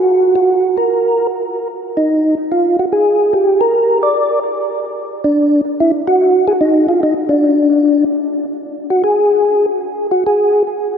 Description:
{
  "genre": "jazz",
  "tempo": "148 BPM",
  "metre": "4/4",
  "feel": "swing 66% on 8ths",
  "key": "unclear",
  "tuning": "A4 = 440 Hz",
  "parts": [
    { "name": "percussive tonewheel organ", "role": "solo", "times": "0.0-10.6 s", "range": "D4 to D5", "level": "-12 LUFS", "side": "equal", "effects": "slow rotary speaker, chorus vibrato, analog delay" }
  ],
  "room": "wet huge ambient reverb, RT60 4.6 s",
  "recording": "dreamy mix soaked in reverb",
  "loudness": "-12 LUFS",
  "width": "side -7 dB against mid",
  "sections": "0.0-8.2 A section; 8.2-11.0 B section",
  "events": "tonewheel organ solo 8.2-11.0",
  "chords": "none",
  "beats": "| 0.07 0.48 0.89 1.29 | 1.70 2.11 2.51 2.92 | 3.33 3.73 4.14 4.55 | 4.95 5.36 5.76 6.17 | 6.58 6.98 7.39 7.79 | 8.20 8.61 9.01 9.42 | 9.82 10.23"
}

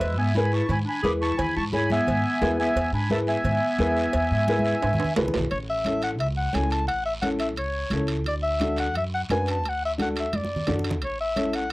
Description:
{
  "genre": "latin, cumbia",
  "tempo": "174 BPM",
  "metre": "4/4",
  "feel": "straight",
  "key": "A major",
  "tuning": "A4 = 440 Hz",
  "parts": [
    { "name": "accordion", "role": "melody", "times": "0.0-5.1 s", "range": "B4 to D6", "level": "-26 LUFS", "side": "equal", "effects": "light tremolo tuning" },
    { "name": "clear clarinet", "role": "second line", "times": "0.0-11.7 s", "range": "G#3 to A5", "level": "-28 LUFS", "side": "left 1 dB", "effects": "none" },
    { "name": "upright bass", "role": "bass", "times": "0.0-11.7 s", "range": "A1 to G#2", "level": "-28 LUFS", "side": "equal", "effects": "none" },
    { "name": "cowbell and timbales", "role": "percussion", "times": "0.0-11.7 s", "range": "none", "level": "-32 LUFS", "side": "right 3 dB", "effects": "none" },
    { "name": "guiro", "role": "percussion", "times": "0.0-11.7 s", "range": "none", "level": "-40 LUFS", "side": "right 2 dB", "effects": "none" },
    { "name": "congas", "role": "percussion", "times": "0.3-11.5 s", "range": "none", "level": "-32 LUFS", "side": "right 1 dB", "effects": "none" },
    { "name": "dark upright piano", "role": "accompaniment", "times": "0.4-11.6 s", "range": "C#4 to C#5", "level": "-28 LUFS", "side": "left 1 dB", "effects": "none" }
  ],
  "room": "light reverb",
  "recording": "dry, gritty hardware recording",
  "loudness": "-22 LUFS",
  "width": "side -20 dB against mid",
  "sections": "0.0-5.5 A section; 5.5-11.7 B section",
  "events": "drum fill 4.5-5.5, 10.3-11.0; clarinet solo 5.5-11.7",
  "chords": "0.0 E; 5.5 A; 8.3 D; 11.0 A",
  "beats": "| 0.01 0.36 0.70 1.04 | 1.39 1.73 2.07 2.42 | 2.76 3.10 3.45 3.79 | 4.13 4.48 4.82 5.16 | 5.51 5.85 6.20 6.54 | 6.88 7.23 7.57 7.92 | 8.26 8.61 8.95 9.30 | 9.64 9.99 10.33 10.68 | 11.02 11.37 11.71"
}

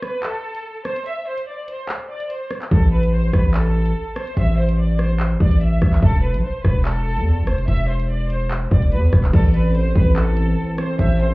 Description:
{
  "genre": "hip hop, drill",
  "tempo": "145 BPM",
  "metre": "4/4",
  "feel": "half-time",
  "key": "A minor",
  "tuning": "A4 = 445 Hz",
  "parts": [
    { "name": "rich studio violin section", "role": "melody", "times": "0.0-11.3 s", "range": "A4 to E5", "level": "-26 LUFS", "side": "equal", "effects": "tape echo" },
    { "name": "drill drum kit", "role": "drums", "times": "0.0-11.3 s", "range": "crash cymbal, handclaps, hi-hat, kick drum, rim click", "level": "-18 LUFS", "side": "equal", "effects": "none" },
    { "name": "distorted 808-style bass", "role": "bass", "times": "2.7-11.3 s", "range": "E1 to E2", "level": "-17 LUFS", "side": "equal", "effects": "distortion" },
    { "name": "hollow clarinet-like synth lead", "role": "second line", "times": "9.3-11.3 s", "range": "C5 to D5", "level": "-30 LUFS", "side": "equal", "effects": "chorus, tape echo" },
    { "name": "sweeping resonant pad", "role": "sustained chords", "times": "9.3-11.3 s", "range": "E3 to A4", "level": "-25 LUFS", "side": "right 2 dB", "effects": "chorus" }
  ],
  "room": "little or no reverb",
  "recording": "heard muffled through a wall, club reverb, EQ",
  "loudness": "-16 LUFS",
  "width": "side -21 dB against mid",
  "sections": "0.0-9.3 A section; 9.3-11.3 B section",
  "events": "break 0.0-2.7",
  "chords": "0.0 N.C.; 2.7 A5; 6.0 Esus4; 9.3 Am",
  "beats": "0.23 0.65 | 1.06 1.47 1.89 2.30 | 2.71 3.13 3.54 3.96 | 4.37 4.78 5.20 5.61 | 6.03 6.44 6.85 7.27 | 7.68 8.09 8.51 8.92 | 9.34 9.75 10.16 10.58 | 10.99"
}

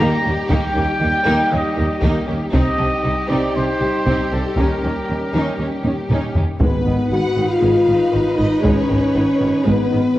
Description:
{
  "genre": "cinematic, epic orchestral film score",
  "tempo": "118 BPM",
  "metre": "4/4",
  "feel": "straight",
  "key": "G# dorian from 6.6 s",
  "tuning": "A4 = 441 Hz",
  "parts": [
    { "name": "warm symphonic violin section", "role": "melody", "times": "0.0-10.2 s", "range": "G4 to B4", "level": "-27 LUFS", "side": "left 2 dB", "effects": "none" },
    { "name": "rich symphonic violin section", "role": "second line", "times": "0.0-10.2 s", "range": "C#4 to F#5", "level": "-29 LUFS", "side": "left 1 dB", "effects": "none" },
    { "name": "warm symphonic viola section", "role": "accompaniment", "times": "0.0-10.2 s", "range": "D#3 to D#4", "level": "-24 LUFS", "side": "right 1 dB", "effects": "none" },
    { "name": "dark French horn section", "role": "sustained chords", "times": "0.0-10.2 s", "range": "G3 to F#4", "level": "-20 LUFS", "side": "left 1 dB", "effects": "none" },
    { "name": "warm trumpet section", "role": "stabs", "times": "0.0-6.1 s", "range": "A4 to A#5", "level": "-22 LUFS", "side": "equal", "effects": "none" },
    { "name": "dark symphonic cello section", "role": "bass", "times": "0.0-10.2 s", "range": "G#2 to D#3", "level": "-26 LUFS", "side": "right 1 dB", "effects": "none" },
    { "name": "rich symphonic double bass section", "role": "bass", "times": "0.0-10.0 s", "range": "G#1 to D#2", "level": "-25 LUFS", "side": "right 1 dB", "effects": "none" },
    { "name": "taiko ensemble", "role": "drums", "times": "0.5-9.1 s", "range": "none", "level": "-21 LUFS", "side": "equal", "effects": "none" },
    { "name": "dark tuba", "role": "bass", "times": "6.6-10.0 s", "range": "G#1", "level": "-26 LUFS", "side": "right 2 dB", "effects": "none" },
    { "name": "timpani", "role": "percussion", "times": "6.6-7.3 s", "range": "G#2", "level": "-28 LUFS", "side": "right 1 dB", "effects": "none" }
  ],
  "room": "wet scoring stage reverb, RT60 1.9 s",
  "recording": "worn, warbling old tape, cassette tape, warbly pitch drift",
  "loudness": "-15 LUFS",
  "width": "side -15 dB against mid",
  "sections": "0.0-6.6 A section; 6.6-10.2 B section",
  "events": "drum fill 5.8-6.6",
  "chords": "0.0 D#; 2.5 Cm; 4.6 D#7; 6.6 G#m",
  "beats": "0.00 | 0.51 1.02 1.52 2.03 | 2.54 3.05 3.56 4.06 | 4.57 5.08 5.59 6.10 | 6.61 7.12 7.63 8.14 | 8.65 9.16 9.67 10.18"
}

